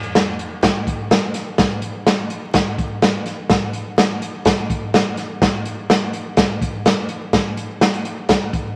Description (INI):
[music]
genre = soul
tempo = 125 BPM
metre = 4/4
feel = straight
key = none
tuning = none
[part]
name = swinging big-band drum kit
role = drums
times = 0.0-8.6 s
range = hi-hat, kick drum, snare drum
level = -19 LUFS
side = equal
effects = none
[sound]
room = moderate studio reverb, RT60 0.5 s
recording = vinyl crackle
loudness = -19 LUFS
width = mono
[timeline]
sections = 0.0-8.8 A section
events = none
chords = none